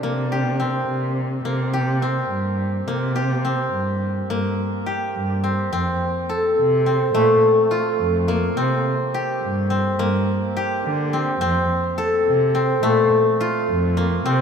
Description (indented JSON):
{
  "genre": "contemporary instrumental, chamber music in an uneven meter",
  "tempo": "211 BPM (eighths)",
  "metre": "5/8",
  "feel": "straight",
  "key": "unclear",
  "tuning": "A4 = 440 Hz",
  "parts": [
    { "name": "steel-string zither", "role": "arpeggios", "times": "0.0-14.4 s", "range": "A3 to A4", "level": "-20 LUFS", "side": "left 1 dB", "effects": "none" },
    { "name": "dark cello", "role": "bass", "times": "0.0-14.4 s", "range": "F2 to D3", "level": "-23 LUFS", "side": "right 1 dB", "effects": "none" }
  ],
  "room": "wet cathedral reverb, RT60 6.5 s",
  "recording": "in a vast, echoing space",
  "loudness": "-18 LUFS",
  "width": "side -6 dB against mid",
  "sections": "0.0-4.3 A section; 4.3-14.4 B section",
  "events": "none",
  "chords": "0.0 C5; 5.7 F; 7.2 Bb5; 8.6 C5; 10.0 Gm; 11.4 F"
}